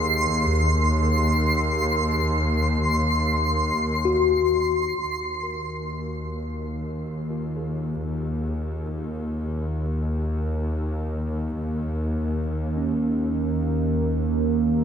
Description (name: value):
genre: ambient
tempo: free time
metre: none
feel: none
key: Eb dorian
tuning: A4 = 440 Hz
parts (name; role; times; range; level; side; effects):
- mellow tine electric piano; arpeggios; 0.0-14.8 s; Db4 to Bb4; -29 LUFS; left 5 dB; medium stereo tremolo, dub echo
- clear symphonic double bass section; bass; 0.0-14.8 s; Eb2; -25 LUFS; equal; none
- twinkling granular texture; texture; 0.0-5.0 s; C6; -25 LUFS; right 1 dB; built-in reverb
- analog drone; drone; 5.4-14.8 s; Eb3 to Bb3; -28 LUFS; right 2 dB; chorus
room: moderate plate reverb, RT60 3.4 s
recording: echo-heavy mix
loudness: -22 LUFS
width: side -8 dB against mid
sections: 0.0-5.0 A section; 5.0-14.8 B section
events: fade-in on tine electric piano 5.0-14.8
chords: 0.0 Ab5/Eb; 5.0 Ebsus2